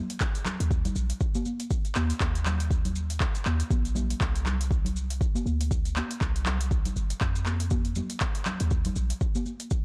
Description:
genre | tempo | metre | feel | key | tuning
afro house | 120 BPM | 4/4 | swing 58% on 16ths | unclear | A4 = 440 Hz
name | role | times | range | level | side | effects
afro-pop drum kit | drums | 0.1-9.8 s | handclaps, hi-hat, shaker | -37 LUFS | equal | overdrive
electronic kick drum | drums | 0.2-9.8 s | none | -30 LUFS | equal | overdrive
congas | percussion | 0.5-9.6 s | none | -37 LUFS | equal | none
warm 808-style bass | bass | 0.6-9.1 s | G1 to F2 | -31 LUFS | equal | sidechain pumping
room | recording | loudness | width
little or no reverb | dark, warm production | -28 LUFS | mono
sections
0.0-9.8 A section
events
none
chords
none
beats
| 0.21 0.71 1.21 1.71 | 2.21 2.71 3.21 3.71 | 4.21 4.71 5.21 5.71 | 6.21 6.71 7.21 7.71 | 8.21 8.71 9.21 9.71

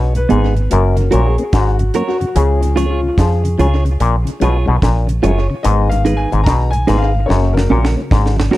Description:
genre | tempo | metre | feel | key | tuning
roots reggae | 73 BPM | 4/4 | swing 64% on 16ths | Db mixolydian | A4 = 438 Hz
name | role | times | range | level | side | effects
auto-wah clav | riff | 0.0-8.4 s | Gb2 to F3 | -20 LUFS | left 5 dB | none
dark upright piano | stabs | 0.0-8.6 s | Db3 to Bb5 | -22 LUFS | left 3 dB | none
deep dub fingered electric bass | bass | 0.0-8.5 s | Gb1 to F2 | -15 LUFS | equal | none
deep reggae drum kit | drums | 0.1-8.6 s | hi-hat, kick drum, snare drum | -19 LUFS | right 1 dB | tape echo
mellow tonewheel organ | accompaniment | 0.2-8.6 s | Gb2 to Db4 | -22 LUFS | left 2 dB | slow rotary speaker, tube saturation
clean electric guitar | accompaniment | 0.3-8.6 s | Cb4 to Db5 | -19 LUFS | right 5 dB | harmonic tremolo, dub echo
room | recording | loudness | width
light reverb | none | -12 LUFS | side -16 dB against mid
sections
0.0-8.6 A section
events
upright piano solo 0.0-8.6; drum fill 7.3-8.6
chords
0.0 Abm; 0.7 Gb; 2.4 Db; 5.6 Abm; 7.3 Gb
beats
0.70 1.53 | 2.35 3.18 4.00 4.82 | 5.64 6.47 7.29 8.11

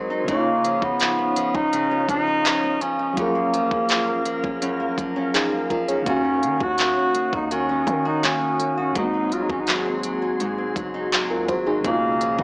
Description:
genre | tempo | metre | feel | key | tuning
contemporary R&B | 83 BPM | 4/4 | straight | unclear | A4 = 435 Hz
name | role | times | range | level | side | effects
FM electric piano with tremolo | accompaniment | 0.0-12.4 s | Ab2 to F5 | -26 LUFS | equal | none
glassy FM pad | sustained chords | 0.0-12.4 s | Db4 to F6 | -29 LUFS | left 1 dB | ensemble chorus, built-in reverb, sidechain pumping
nylon-string guitar | arpeggios | 0.0-12.4 s | Gb2 to Gb4 | -28 LUFS | equal | tape echo
warm bass clarinet | melody | 0.3-12.4 s | Bb3 to Gb4 | -22 LUFS | equal | none
trap drum kit | drums | 0.3-12.4 s | handclaps, hi-hat, kick drum | -24 LUFS | equal | overdrive
warm 808-style bass | bass | 6.1-12.4 s | Gb1 to Eb3 | -33 LUFS | equal | none
room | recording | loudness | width
light reverb, digital ambience | dry, gritty hardware recording, small speaker sound | -19 LUFS | side -29 dB against mid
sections
0.0-12.4 A section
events
none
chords
0.3 Db9; 3.2 Gbmaj7; 6.1 Ebm7; 9.0 Ab7; 11.8 Db9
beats
| 0.28 1.00 1.73 2.45 | 3.17 3.90 4.62 5.34 | 6.06 6.79 7.51 8.23 | 8.96 9.68 10.40 11.12 | 11.85

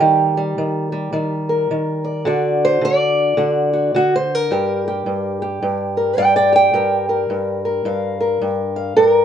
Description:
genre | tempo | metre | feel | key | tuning
acoustic country blues, solo or duo | 107 BPM | 4/4 | swing 61% on 8ths | G minor | A4 = 439 Hz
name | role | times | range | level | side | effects
fingerpicked old ladder-braced acoustic guitar | solo | 0.0-9.2 s | G2 to G5 | -15 LUFS | equal | none
room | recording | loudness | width
moderate studio reverb, RT60 0.7 s | band playing live in one room, nothing above 10.6 kHz | -16 LUFS | side -9 dB against mid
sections
0.0-9.0 A section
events
steel-string acoustic guitar solo 0.0-9.0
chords
0.0 Eb; 2.3 D; 4.5 Gm7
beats
| 0.03 0.59 1.15 1.71 | 2.27 2.83 3.39 3.95 | 4.50 5.06 5.62 6.18 | 6.74 7.30 7.86 8.41 | 8.97

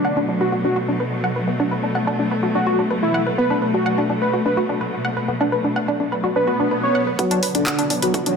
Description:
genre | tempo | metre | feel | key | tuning
melodic techno | 126 BPM | 4/4 | straight | B minor | A4 = 440 Hz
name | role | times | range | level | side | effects
wide unison lead | melody | 0.0-8.4 s | D4 to C#5 | -23 LUFS | equal | sidechain pumping, dub echo
rich chamber string section | sustained chords | 0.0-8.4 s | B2 to B3 | -23 LUFS | left 1 dB | stereo widening, sidechain pumping, low-pass filter
woody wave-folded pluck | arpeggios | 0.0-8.4 s | B3 to F#5 | -22 LUFS | equal | wide subtle chorus, sidechain pumping, dub echo
swell and riser | sound effects | 6.4-8.4 s | none | -26 LUFS | right 2 dB | none
soft supersaw | second line | 7.2-8.4 s | D3 to F#3 | -24 LUFS | equal | vintage 12-bit sampler grit, sidechain pumping, low-pass filter
bowed-like drone | drone | 7.4-8.4 s | B2 | -38 LUFS | right 3 dB | built-in reverb, sidechain pumping
electronic kick drum | drums | 7.2-8.2 s | none | -28 LUFS | equal | high-pass filter on kick, studio reverb
house drum kit | drums | 7.2-8.4 s | handclaps, hi-hat | -24 LUFS | left 1 dB | studio reverb
gritty driven synth bass | bass | 7.3-8.3 s | F#1 to B1 | -30 LUFS | right 1 dB | sidechain pumping, high-pass filter
room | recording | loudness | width
moderate scoring stage reverb, RT60 1.9 s | none | -18 LUFS | side -5 dB against mid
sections
0.0-7.2 A section; 7.2-8.4 B section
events
swell 6.4-7.2; build-up 7.2-8.4; filter sweep on analog synth lead 7.2-8.4; filter sweep on supersaw synth 7.2-8.4; filter sweep on string section 7.2-8.4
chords
0.0 Bm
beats
0.05 0.52 1.00 | 1.48 1.95 2.43 2.90 | 3.38 3.86 4.33 4.81 | 5.29 5.76 6.24 6.71 | 7.19 7.67 8.14

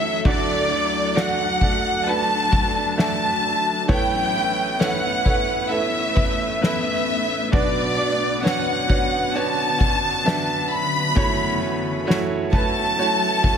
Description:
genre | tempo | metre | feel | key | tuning
pop ballad | 66 BPM | 4/4 | straight | B minor | A4 = 440 Hz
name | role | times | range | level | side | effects
warm studio violin section | melody | 0.0-13.6 s | D5 to B5 | -22 LUFS | left 1 dB | none
clear baby grand piano | accompaniment | 0.0-13.6 s | F#1 to E5 | -26 LUFS | right 5 dB | none
granular cloud pad | sustained chords | 0.0-13.6 s | D3 to B4 | -30 LUFS | left 3 dB | built-in reverb
direct-recorded clean electric guitar | arpeggios | 0.0-13.6 s | F#2 to B4 | -31 LUFS | left 5 dB | ping-pong delay
soft-mallet drum kit | drums | 0.3-13.6 s | kick drum, ride cymbal, snare drum | -24 LUFS | equal | none
room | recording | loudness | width
light reverb, small room ambience | none | -18 LUFS | side -7 dB against mid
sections
0.0-13.6 A section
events
none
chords
0.3 D; 3.9 Aadd9; 7.5 Bmadd9; 11.2 F#m7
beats
| 0.25 1.16 2.07 2.98 | 3.89 4.80 5.71 6.61 | 7.52 8.43 9.34 10.25 | 11.16 12.07 12.98

